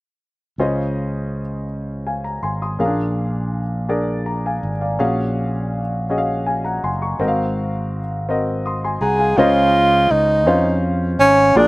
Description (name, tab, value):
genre	slow gospel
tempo	55 BPM (dotted quarters)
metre	6/8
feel	straight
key	Db major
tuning	A4 = 440 Hz
part	clear concert grand piano	accompaniment	0.6-11.7 s	Ab2 to Eb6	-21 LUFS	left 1 dB	none
part	fingered electric bass	bass	0.6-11.7 s	Gb1 to F2	-23 LUFS	equal	none
part	warm tenor saxophone	melody	9.0-11.7 s	Db4 to Ab4	-13 LUFS	right 1 dB	none
room	little or no reverb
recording	recorded outdoors, with no room sound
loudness	-17 LUFS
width	side -21 dB against mid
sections	0.6-9.4 A section; 9.4-11.7 B section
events	none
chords	0.6 Dbmaj9; 2.8 Bb7; 5.0 Ebm11/Bb; 7.2 Ab13; 9.4 Dbmaj9